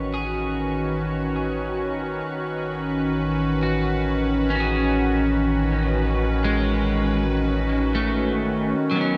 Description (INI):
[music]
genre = ambient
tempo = 74 BPM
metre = 4/4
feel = straight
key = unclear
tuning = A4 = 441 Hz
[part]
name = evolving wavetable pad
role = sustained chords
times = 0.0-9.2 s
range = D#3 to B4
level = -25 LUFS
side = equal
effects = chorus, built-in reverb, shimmer reverb
[part]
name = warm sub bass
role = bass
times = 0.0-9.2 s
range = G#1 to A1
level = -29 LUFS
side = equal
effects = none
[part]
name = organ-like drone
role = drone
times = 0.0-8.9 s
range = C#4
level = -38 LUFS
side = equal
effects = none
[part]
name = electric guitar at the edge of break-up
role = arpeggios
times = 0.1-9.2 s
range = F#3 to G#4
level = -30 LUFS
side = equal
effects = subtle chorus, tape echo, shimmer reverb
[sound]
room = wet concert hall reverb, RT60 2.3 s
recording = none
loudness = -23 LUFS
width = mono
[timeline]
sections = 0.0-8.8 A section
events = fade-in on clean electric guitar 0.0-8.8; fade-in on sub bass 0.0-8.8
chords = 0.0 B7/A